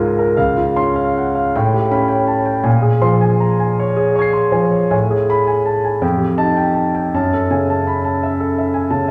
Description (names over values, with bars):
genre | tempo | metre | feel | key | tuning
classical, impressionist solo piano | 53 BPM (dotted quarters) | 6/8 | uneven beats, rubato | unclear | A4 = 440 Hz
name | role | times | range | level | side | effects
clear concert grand piano | solo | 0.0-9.1 s | Db2 to C7 | -16 LUFS | equal | none
room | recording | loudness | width
wet recital hall reverb, RT60 1.5 s | heard from further back in the room | -16 LUFS | mono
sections
0.4-9.1 A section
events
none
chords
0.4 Dbmaj7; 1.5 A9; 2.7 Bbm9; 4.9 Asus2; 6.0 F9; 7.1 Gbm9